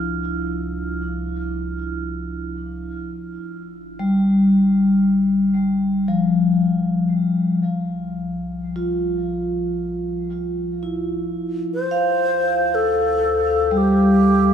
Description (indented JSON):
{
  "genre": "ambient",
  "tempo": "free time",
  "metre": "none",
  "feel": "none",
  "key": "unclear",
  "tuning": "A4 = 440 Hz",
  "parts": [
    { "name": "vibraphone with soft mallets", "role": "arpeggios", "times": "0.0-14.5 s", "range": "F3 to F6", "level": "-19 LUFS", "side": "left 1 dB", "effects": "diffuse ambient delay" },
    { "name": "warm sub bass", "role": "bass", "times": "0.0-14.5 s", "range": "G1 to D2", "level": "-34 LUFS", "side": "equal", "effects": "none" },
    { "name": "wooden-headed alto flute", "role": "melody", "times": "11.7-14.5 s", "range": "G4 to C5", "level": "-19 LUFS", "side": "left 2 dB", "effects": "diffuse ambient delay" }
  ],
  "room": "wet cathedral reverb, RT60 5.1 s",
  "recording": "in a vast, echoing space, small room ambience",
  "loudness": "-18 LUFS",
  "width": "side -8 dB against mid",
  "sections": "0.0-11.7 A section; 11.7-14.5 B section",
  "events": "fade-out on sub bass 0.0-11.7",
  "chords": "0.0 C; 3.4 G5; 7.6 Bb5; 11.7 Dm7",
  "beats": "free time"
}